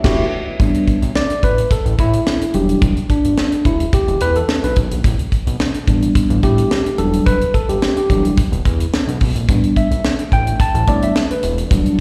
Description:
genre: early-eighties boogie funk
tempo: 108 BPM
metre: 4/4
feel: straight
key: unclear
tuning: A4 = 440 Hz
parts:
  - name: tine electric piano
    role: accompaniment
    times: 0.0-12.0 s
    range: F#3 to A5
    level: -20 LUFS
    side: equal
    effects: slapback echo
  - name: soft string machine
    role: sustained chords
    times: 0.0-0.6, 9.5-12.0 s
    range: E3 to A4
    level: -34 LUFS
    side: equal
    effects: none
  - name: fat analog bass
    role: bass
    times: 0.0-11.8 s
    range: E1 to A2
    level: -21 LUFS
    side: equal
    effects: none
  - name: tight funk drum kit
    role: drums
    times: 0.0-12.0 s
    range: crash cymbal, hi-hat, kick drum, snare drum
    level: -20 LUFS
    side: equal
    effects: slapback echo
room: light reverb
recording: live gig heard through the venue's PA, recital hall reverb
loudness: -16 LUFS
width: mono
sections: 0.6-12.0 A section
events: band accent 0.0-0.6; tine electric piano solo 0.6-12.0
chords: 0.0 Em11; 0.6 A7sus4; 2.5 Em9; 5.0 A7sus4; 7.0 Em9; 9.5 A7sus4; 11.4 Em9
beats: 0.04 | 0.60 1.15 1.71 2.27 | 2.82 3.38 3.93 4.49 | 5.04 5.60 6.15 6.71 | 7.26 7.82 8.38 8.93 | 9.49 10.04 10.60 11.15 | 11.71

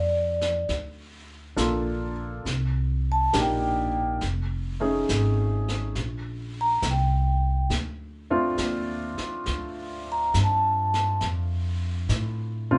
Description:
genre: jazz ballad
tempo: 68 BPM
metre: 4/4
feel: swing 69% on 8ths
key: Bb major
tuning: A4 = 440 Hz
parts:
  - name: vibraphone with medium mallets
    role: melody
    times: 0.0-11.2 s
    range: D5 to Bb5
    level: -27 LUFS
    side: equal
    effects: none
  - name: upright bass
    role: bass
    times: 0.0-12.8 s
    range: F1 to A2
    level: -29 LUFS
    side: equal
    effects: none
  - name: jazz brush drum kit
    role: drums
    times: 0.4-12.8 s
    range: brushed snare drum, hi-hat, snare drum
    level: -37 LUFS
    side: equal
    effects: none
  - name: warm concert grand piano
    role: accompaniment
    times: 1.6-12.8 s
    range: C3 to A4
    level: -30 LUFS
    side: equal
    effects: none
room: moderate studio ambience, RT60 0.5 s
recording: band playing live in one room, nothing above 10.7 kHz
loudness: -26 LUFS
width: mono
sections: 0.0-12.8 A section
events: vibraphone solo 0.0-12.8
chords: 0.0 Gm9 (rootless); 2.4 Cm7; 4.2 F7alt; 5.9 Bbmaj9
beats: 0.68 1.56 | 2.44 3.32 4.20 5.07 | 5.95 6.82 7.70 8.58 | 9.46 10.33 11.21 12.10

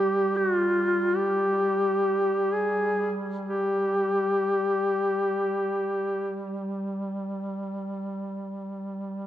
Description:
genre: caucasian folk, Caucasian lament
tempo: free time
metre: none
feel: none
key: unclear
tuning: A4 = 441 Hz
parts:
  - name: warm duduk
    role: melody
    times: 0.0-6.4 s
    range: F4 to Ab4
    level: -24 LUFS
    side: left 1 dB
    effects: none
  - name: warm duduk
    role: drone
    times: 0.0-9.3 s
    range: G3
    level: -32 LUFS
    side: right 1 dB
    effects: none
room: moderate church reverb, RT60 2.8 s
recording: dark, warm production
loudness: -24 LUFS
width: side -12 dB against mid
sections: 0.0-9.3 A section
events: none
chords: none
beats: free time

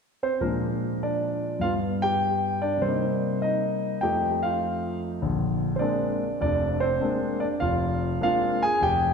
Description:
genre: solo jazz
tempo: 100 BPM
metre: 4/4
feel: swing 66% on 8ths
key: Bb mixolydian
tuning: A4 = 440 Hz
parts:
  - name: warm grand piano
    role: solo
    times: 0.2-9.1 s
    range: F1 to Ab5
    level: -23 LUFS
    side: equal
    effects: none
room: wet concert hall reverb, RT60 2.0 s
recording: recorded in a church or concert hall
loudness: -23 LUFS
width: side -6 dB against mid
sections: 0.4-5.2 A section; 5.2-9.1 B section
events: none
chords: 0.4 Bb7; 1.6 G7; 2.8 Cm7; 4.0 F7; 5.2 Bb9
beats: | 0.41 1.01 1.61 2.21 | 2.81 3.41 4.01 4.61 | 5.21 5.82 6.42 7.02 | 7.62 8.22 8.82

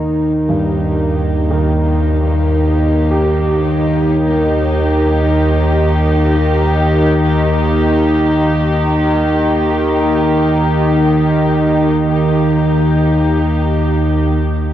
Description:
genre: dark ambient drone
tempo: free time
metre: none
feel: none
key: Eb major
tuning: A4 = 439 Hz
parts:
  - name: dark chamber cello section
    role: sustained chords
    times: 0.0-14.3 s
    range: Bb3 to G4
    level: -19 LUFS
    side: equal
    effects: none
  - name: dark baby grand piano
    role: arpeggios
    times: 0.0-14.4 s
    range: G2 to G4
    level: -22 LUFS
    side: right 2 dB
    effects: tape echo
  - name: analog drone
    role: drone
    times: 0.0-14.7 s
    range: Eb2 to Eb3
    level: -13 LUFS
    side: equal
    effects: chorus
room: wet huge ambient reverb, RT60 9.0 s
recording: worn, warbling old tape, cassette tape, warbly pitch drift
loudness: -12 LUFS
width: side -12 dB against mid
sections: 0.0-14.3 A section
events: fade-in on cello section 0.0-14.3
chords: 0.0 Eb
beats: free time

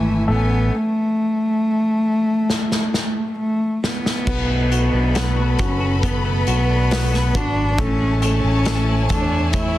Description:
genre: pop ballad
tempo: 68 BPM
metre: 4/4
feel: straight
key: unclear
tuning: A4 = 440 Hz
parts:
  - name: warm cello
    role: melody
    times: 0.0-9.8 s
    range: A3 to E4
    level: -21 LUFS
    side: equal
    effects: none
  - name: clear concert grand piano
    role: accompaniment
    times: 0.0-9.8 s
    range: E3 to F#4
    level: -26 LUFS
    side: equal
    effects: plate reverb
  - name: warm studio string section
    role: sustained chords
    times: 0.0-9.8 s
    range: C#4 to B5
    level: -28 LUFS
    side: left 2 dB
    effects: none
  - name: fingered electric bass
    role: bass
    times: 0.0-9.8 s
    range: F#1 to E2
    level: -20 LUFS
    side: equal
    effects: none
  - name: loose indie drum kit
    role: drums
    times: 2.5-9.7 s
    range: crash cymbal, hi-hat, kick drum, snare drum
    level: -24 LUFS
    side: equal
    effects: none
  - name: twelve-string electric guitar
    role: arpeggios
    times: 4.3-9.8 s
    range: A2 to F#4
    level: -28 LUFS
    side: left 4 dB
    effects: analog chorus, plate reverb, digital delay
room: light reverb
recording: dense, heavily limited modern master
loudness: -17 LUFS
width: side -14 dB against mid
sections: 0.0-4.3 A section; 4.3-9.8 B section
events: stop 0.7-4.3; drum fill 2.5-4.3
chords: 0.3 Amaj7; 4.3 Bm7; 7.8 Amaj7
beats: | 0.72 1.60 2.48 3.37 | 4.27 5.15 6.03 6.91 | 7.79 8.66 9.54

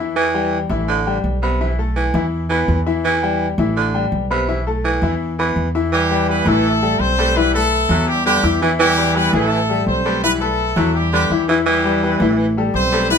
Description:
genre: latin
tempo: 167 BPM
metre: 4/4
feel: straight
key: E minor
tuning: A4 = 439 Hz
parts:
  - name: bright grand piano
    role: accompaniment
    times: 0.0-13.2 s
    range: E3 to B5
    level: -21 LUFS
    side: left 6 dB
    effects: none
  - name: upright bass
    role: bass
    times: 0.0-13.2 s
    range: A1 to E2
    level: -20 LUFS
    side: right 1 dB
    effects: none
  - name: raspy baritone saxophone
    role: second line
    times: 0.2-13.2 s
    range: C3 to G3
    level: -19 LUFS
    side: right 3 dB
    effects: none
  - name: brilliant horn section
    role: melody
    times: 5.9-13.2 s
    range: G3 to C5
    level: -19 LUFS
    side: equal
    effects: none
room: moderate studio reverb, RT60 0.6 s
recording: band playing live in one room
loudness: -15 LUFS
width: side -6 dB against mid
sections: 0.0-5.9 A section; 5.9-13.2 B section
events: none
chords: 0.0 Em; 0.9 Am7; 1.6 B7sus4; 2.3 Em; 4.5 B7sus4; 5.2 E5; 5.9 Em; 7.4 B7sus4; 8.1 Em; 10.2 B7sus4; 10.9 Em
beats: | 0.16 0.52 0.88 1.24 | 1.60 1.96 2.32 2.68 | 3.04 3.40 3.77 4.12 | 4.49 4.84 5.21 5.56 | 5.92 6.28 6.64 7.00 | 7.36 7.72 8.08 8.44 | 8.80 9.15 9.51 9.87 | 10.23 10.59 10.95 11.31 | 11.67 12.03 12.38 12.74 | 13.10

